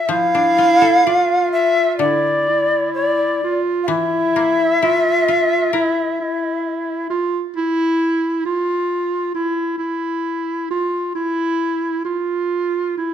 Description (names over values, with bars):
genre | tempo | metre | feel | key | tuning
japanese traditional, Japanese chamber music | 62-68 BPM | 4/4 | rubato | unclear | A4 = 442 Hz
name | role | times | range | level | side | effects
reedy long shakuhachi | melody | 0.0-7.1 s | D5 to F5 | -16 LUFS | left 1 dB | none
mellow clarinet | second line | 0.1-13.1 s | E4 to F4 | -19 LUFS | right 1 dB | none
koto | accompaniment | 0.1-7.5 s | D3 to D5 | -26 LUFS | left 6 dB | none
room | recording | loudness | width
light reverb | none | -16 LUFS | side -9 dB against mid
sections
0.1-13.1 A section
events
none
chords
none